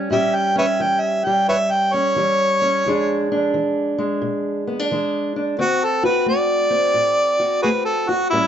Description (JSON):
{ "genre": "acoustic country blues, solo or duo", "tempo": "88 BPM", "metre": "4/4", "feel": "swing 65% on 8ths", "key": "unclear", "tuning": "A4 = 438 Hz", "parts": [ { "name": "fingerpicked steel-string acoustic guitar", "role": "accompaniment", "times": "0.0-8.5 s", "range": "E2 to G#4", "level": "-21 LUFS", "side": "equal", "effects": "none" }, { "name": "warm harmonica", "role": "melody", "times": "0.1-8.5 s", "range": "E4 to G5", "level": "-18 LUFS", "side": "right 1 dB", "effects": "plate reverb" } ], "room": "moderate studio reverb, RT60 0.7 s", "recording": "dark, warm production, nothing above 7.8 kHz", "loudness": "-17 LUFS", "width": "side -9 dB against mid", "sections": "0.0-8.5 A section", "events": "harmonica solo 0.0-8.5", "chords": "0.0 A7; 2.9 E7; 5.6 D7" }